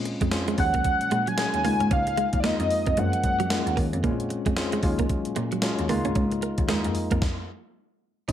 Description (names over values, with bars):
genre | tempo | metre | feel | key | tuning
R&B, new jack swing | 113 BPM | 4/4 | swing 60% on 16ths | unclear | A4 = 442 Hz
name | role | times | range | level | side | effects
mellow tine electric piano | accompaniment | 0.0-8.3 s | F3 to Ab4 | -29 LUFS | left 3 dB | medium stereo tremolo
warm cello | bass | 0.0-8.3 s | Db2 to Bb2 | -30 LUFS | equal | none
direct-recorded clean electric guitar | riff | 0.1-8.3 s | Gb3 to Eb4 | -31 LUFS | right 7 dB | analog chorus
gated 80s digital drum machine | drums | 0.1-8.3 s | crash cymbal, hi-hat, kick drum, snare drum, tambourine | -28 LUFS | equal | gated reverb, gated reverb snare
octave-doubled lead | melody | 0.6-3.8 s | D5 to Ab5 | -26 LUFS | equal | chorus, phaser
room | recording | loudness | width
light reverb | none | -22 LUFS | side -10 dB against mid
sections
0.0-8.3 A section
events
stop 7.2-8.3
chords
0.0 Bbm9; 0.6 Ebm11; 1.6 Db69; 3.0 Gbmaj7; 4.0 Bbm9; 4.8 Ebm11; 5.9 Db69; 7.2 N.C.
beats
0.32 0.85 1.38 | 1.91 2.44 2.98 3.51 | 4.04 4.57 5.10 5.63 | 6.16 6.69 7.22 7.75 | 8.29